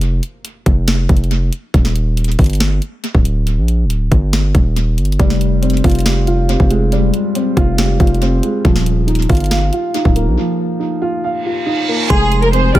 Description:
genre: hip hop, trap.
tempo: 139 BPM.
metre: 4/4.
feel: half-time.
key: unclear.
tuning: A4 = 439 Hz.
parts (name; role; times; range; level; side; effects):
distorted 808-style bass; bass; 0.0-12.8 s; D1 to Bb1; -15 LUFS; equal; distortion.
trap drum kit; drums; 0.0-12.8 s; hi-hat, kick drum, snare drum; -15 LUFS; equal; tape echo.
dark concert grand piano; accompaniment; 5.2-12.8 s; F3 to F5; -17 LUFS; equal; low-pass filter, tape echo.
reverse cymbal; sound effects; 11.4-12.1 s; none; -21 LUFS; right 5 dB; none.
warm studio violin section; melody; 12.1-12.8 s; Ab4 to D5; -15 LUFS; right 1 dB; low-pass filter, tape echo.
delicate synth tine bell; second line; 12.1-12.8 s; C6 to F6; -22 LUFS; right 3 dB; chorus, phaser, tremolo, tape echo.
dark chamber string section; sustained chords; 12.1-12.8 s; F3 to C4; -26 LUFS; left 3 dB; none.
dark brass ensemble; stabs; 12.7-12.8 s; C2 to G3; -15 LUFS; left 6 dB; none.
room: studio reverb.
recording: echo-heavy mix.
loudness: -12 LUFS.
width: side -15 dB against mid.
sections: 0.0-12.1 A section.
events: break 0.0-5.2, 10.4-12.1; reverse cymbal 11.4-12.1.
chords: 0.0 N.C.; 1.7 Eb5; 5.2 Fmadd9; 8.6 Ebsus2; 12.1 Fm.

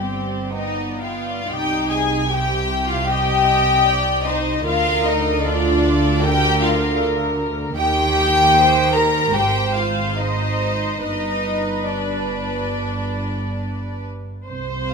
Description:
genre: classical, slow romantic movement for string orchestra.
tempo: 59-80 BPM.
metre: 4/4.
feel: rubato.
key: C minor.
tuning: A4 = 436 Hz.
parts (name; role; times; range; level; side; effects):
clear studio violin section; melody; 0.0-14.9 s; D5 to Bb5; -22 LUFS; left 2 dB; none.
warm studio violin section; second line; 0.0-14.9 s; D4 to Bb4; -22 LUFS; left 3 dB; none.
warm studio viola section; accompaniment; 0.0-14.9 s; B3 to Eb5; -24 LUFS; right 2 dB; none.
warm studio cello section; bass; 0.0-14.9 s; G2 to G3; -26 LUFS; right 2 dB; none.
warm studio double bass section; bass; 0.0-14.9 s; G1 to Eb2; -26 LUFS; right 2 dB; none.
room: moderate scoring stage reverb, RT60 1.9 s.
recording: none.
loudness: -17 LUFS.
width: side -5 dB against mid.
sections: 0.0-1.5 A section; 1.5-14.9 B section.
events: none.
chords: 0.0 G; 1.5 Cm; 4.7 Bb/D; 7.8 Eb; 9.4 Ab; 11.0 G.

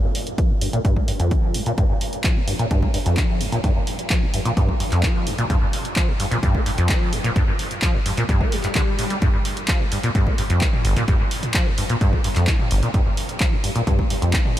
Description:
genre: acid house.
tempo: 129 BPM.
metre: 4/4.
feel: straight.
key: G minor.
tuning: A4 = 443 Hz.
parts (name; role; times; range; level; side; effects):
acid bass, saw; riff; 0.0-14.6 s; G1 to Bb3; -22 LUFS; equal; lush chorus, diffuse ambient delay.
punchy analog drum machine; drums; 0.1-14.6 s; handclaps, hi-hat, toms; -27 LUFS; equal; none.
electronic kick drum; drums; 0.4-14.4 s; none; -21 LUFS; equal; none.
swell; sound effects; 8.5-9.2 s; none; -34 LUFS; left 4 dB; none.
room: light reverb, digital ambience.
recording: none.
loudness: -18 LUFS.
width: side -13 dB against mid.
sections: 0.0-14.6 A section.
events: filter sweep on acid bass 0.0-14.6; swell 8.5-9.2.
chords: none.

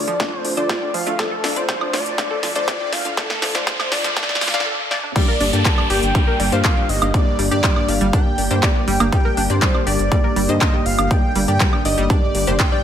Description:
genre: progressive house.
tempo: 121 BPM.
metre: 4/4.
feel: straight.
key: G minor.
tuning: A4 = 439 Hz.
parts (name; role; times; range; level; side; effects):
wide unison lead; melody; 0.0-12.8 s; A4 to A5; -24 LUFS; equal; sidechain pumping, tape echo.
airy breathy pad; sustained chords; 0.0-12.8 s; D3 to G4; -28 LUFS; right 1 dB; chorus, sidechain pumping.
wide unison pluck; stabs; 0.0-12.8 s; G2 to G5; -25 LUFS; left 3 dB; sidechain pumping, tape echo.
round analog bass; bass; 0.0-12.6 s; D1 to G2; -23 LUFS; equal; sidechain pumping, high-pass filter.
riser and downlifter; sound effects; 0.0-9.1 s; none; -28 LUFS; right 1 dB; none.
analog pluck; arpeggios; 0.1-12.8 s; F3 to F5; -26 LUFS; right 1 dB; chorus, sidechain pumping, tape echo.
big-room dance drum kit; drums; 0.1-12.7 s; crash cymbal, handclaps, hi-hat, snare drum, woodblock; -23 LUFS; equal; sidechain pumping on hats, sidechain pumping on perc, sidechain pumping on cymbals.
electronic kick drum; drums; 0.2-12.7 s; none; -18 LUFS; equal; none.
room: light reverb.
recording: high-pass filter.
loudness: -16 LUFS.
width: side -9 dB against mid.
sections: 0.0-5.2 A section; 5.2-12.8 B section.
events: build-up 0.0-5.2; drum fill 0.0-4.7, 4.9; riser 0.0-4.7; filter sweep on synth pluck 0.0-5.2; filter sweep on analog synth lead 0.0-5.2; filter sweep 0.0-5.2; break 4.7-5.2; drop 5.2-12.8.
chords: 0.0 Dm; 5.2 Gm.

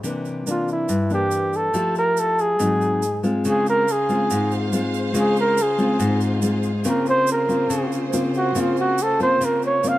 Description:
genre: bossa nova.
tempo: 141 BPM.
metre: 4/4.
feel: straight.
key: Db major from 3.4 s.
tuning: A4 = 441 Hz.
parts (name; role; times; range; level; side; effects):
nylon-string guitar; accompaniment; 0.0-10.0 s; G2 to G4; -22 LUFS; left 1 dB; none.
tube shaker; percussion; 0.0-10.0 s; none; -35 LUFS; right 8 dB; none.
warm flugelhorn; melody; 0.5-10.0 s; E4 to F5; -20 LUFS; right 1 dB; none.
clear studio string section; sustained chords; 3.5-10.0 s; Db3 to F5; -31 LUFS; right 3 dB; none.
room: light reverb.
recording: dark, warm production.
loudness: -18 LUFS.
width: side -15 dB against mid.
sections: 0.0-3.4 A section; 3.4-10.0 B section.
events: flugelhorn solo 3.4-10.0.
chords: 0.0 C9; 1.7 Fmaj9; 2.6 Ab7; 3.4 Dbmaj7; 6.9 Gbmaj9#11/Db (rootless).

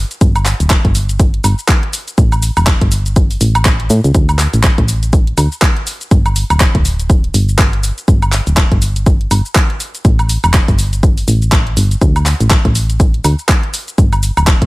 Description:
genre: piano house.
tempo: 122 BPM.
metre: 4/4.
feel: swing 58% on 16ths.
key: unclear.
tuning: A4 = 440 Hz.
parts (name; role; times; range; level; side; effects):
solid FM bass; bass; 0.0-14.7 s; D1 to A2; -14 LUFS; equal; sidechain pumping.
garage drum kit; drums; 0.1-14.7 s; handclaps, hi-hat, shaker, woodblock; -17 LUFS; right 1 dB; overdrive, small room ambience.
electronic kick drum; drums; 0.2-14.7 s; none; -11 LUFS; equal; overdrive, small room ambience.
room: digital ambience.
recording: none.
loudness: -10 LUFS.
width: side -21 dB against mid.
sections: 0.0-14.7 A section.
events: none.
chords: none.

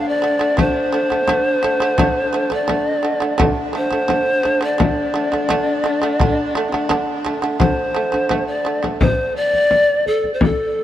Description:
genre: mongolian traditional, Mongolian folk.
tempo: 86 BPM.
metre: 4/4.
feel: straight.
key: unclear.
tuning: A4 = 439 Hz.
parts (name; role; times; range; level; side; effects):
mellow pan flute; melody; 0.0-10.8 s; A4 to F5; -18 LUFS; equal; none.
shamisen; arpeggios; 0.0-9.0 s; D3 to A3; -21 LUFS; right 3 dB; none.
bright horsehead fiddle; drone; 0.0-9.1 s; D4; -26 LUFS; left 2 dB; none.
frame drum; percussion; 0.6-10.6 s; none; -20 LUFS; left 2 dB; none.
room: moderate huge ambient reverb, RT60 4.7 s.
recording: dark, warm production.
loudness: -15 LUFS.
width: side -12 dB against mid.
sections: 0.0-9.0 A section; 9.0-10.8 B section.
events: none.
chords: 0.0 D5; 9.0 N.C..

